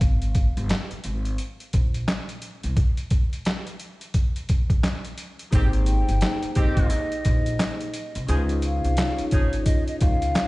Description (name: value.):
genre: hip hop, boom-bap hip-hop.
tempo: 87 BPM.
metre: 4/4.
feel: swing 62% on 16ths.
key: Ab major.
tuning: A4 = 440 Hz.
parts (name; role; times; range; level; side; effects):
upright bass; bass; 0.0-10.3 s; G1 to Db2; -25 LUFS; equal; none.
trip hop sampler-style drum kit; drums; 0.0-10.5 s; handclaps, hi-hat, kick drum, snare drum; -22 LUFS; equal; none.
vibraphone with soft mallets; accompaniment; 5.5-10.5 s; Bb3 to Db5; -29 LUFS; left 1 dB; cassette tape, high-pass filter, low-pass filter.
mellow horn section; stabs; 5.5-9.5 s; Eb3 to Ab4; -35 LUFS; right 1 dB; high-pass filter, low-pass filter, tape echo.
egg shaker; percussion; 5.5-10.5 s; none; -49 LUFS; right 6 dB; none.
breathy mellow concert flute; melody; 5.9-10.5 s; Db5 to G5; -31 LUFS; left 1 dB; high-pass filter, low-pass filter, tape echo.
room: little or no reverb.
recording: played on a big sound system in a bare room, stone room reverb, vinyl crackle, nothing above 10.5 kHz.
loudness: -21 LUFS.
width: side -21 dB against mid.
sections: 0.0-5.5 A section; 5.5-10.5 B section.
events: break 0.0-5.5.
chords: 0.0 Absus2; 2.8 N.C.; 5.5 Abmaj9; 8.3 Dbmaj9.